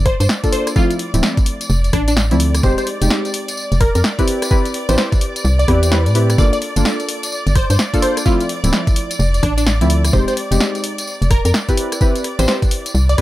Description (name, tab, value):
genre	UK garage, two-step garage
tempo	128 BPM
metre	4/4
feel	swing 62% on 16ths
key	unclear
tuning	A4 = 438 Hz
part	rich studio violin section	sustained chords	0.0-13.2 s	D5	-28 LUFS	left 1 dB	sidechain pumping
part	deep mellow chord stab	stabs	0.0-13.2 s	F3 to B4	-20 LUFS	equal	chorus, dub echo
part	organ-like FM bass	bass	0.0-13.2 s	D1 to A2	-15 LUFS	equal	none
part	plucky unison lead	melody	0.1-13.2 s	D4 to D5	-22 LUFS	equal	cassette tape, dub echo
part	electronic kick drum	drums	0.1-13.2 s	none	-16 LUFS	equal	overdrive
part	punchy analog drum machine	drums	0.1-13.2 s	hi-hat, rim click, snare drum, tambourine	-21 LUFS	equal	overdrive
room	little or no reverb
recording	none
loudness	-14 LUFS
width	side -16 dB against mid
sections	0.0-13.2 A section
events	none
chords	0.0 Gm9; 0.8 Dm9; 2.6 Fm9; 4.3 Am9; 6.4 Gm9; 8.3 Dm9; 10.1 Fm9; 11.8 Am9 (rootless)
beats	0.29 | 0.76 1.23 1.70 2.17 | 2.63 3.10 3.57 4.04 | 4.51 4.98 5.45 5.92 | 6.38 6.85 7.32 7.79 | 8.26 8.73 9.20 9.66 | 10.13 10.60 11.07 11.54 | 12.01 12.48 12.95